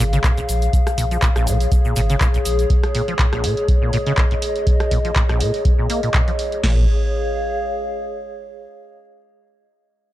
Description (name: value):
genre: acid house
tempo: 122 BPM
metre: 4/4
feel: swing 55% on 16ths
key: Bb minor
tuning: A4 = 441 Hz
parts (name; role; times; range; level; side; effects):
- acid bass, saw; riff; 0.0-6.9 s; Bb1 to Bb3; -23 LUFS; equal; ensemble chorus, cassette tape, sidechain pumping, dub echo
- warm sub bass; bass; 0.0-2.7, 6.6-6.9 s; Ab1 to Bb1; -20 LUFS; equal; sidechain pumping
- punchy analog drum machine; drums; 0.0-6.6 s; handclaps, hi-hat, rim click; -25 LUFS; equal; none
- egg shaker; percussion; 0.0-2.7 s; none; -33 LUFS; left 3 dB; none
- impact; sound effects; 0.1-0.7 s; none; -35 LUFS; equal; none
- warbly tape-like pad; texture; 0.0-8.6 s; Ab4 to F5; -24 LUFS; left 1 dB; chorus, built-in reverb, sidechain pumping
- booming analog drum machine; drums; 0.2-6.8 s; crash cymbal, kick drum, snare drum; -18 LUFS; equal; none
room: light reverb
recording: dark, warm production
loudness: -16 LUFS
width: side -14 dB against mid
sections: 0.0-6.6 A section; 6.6-8.6 B section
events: impact 0.0-0.7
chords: 0.0 Bbm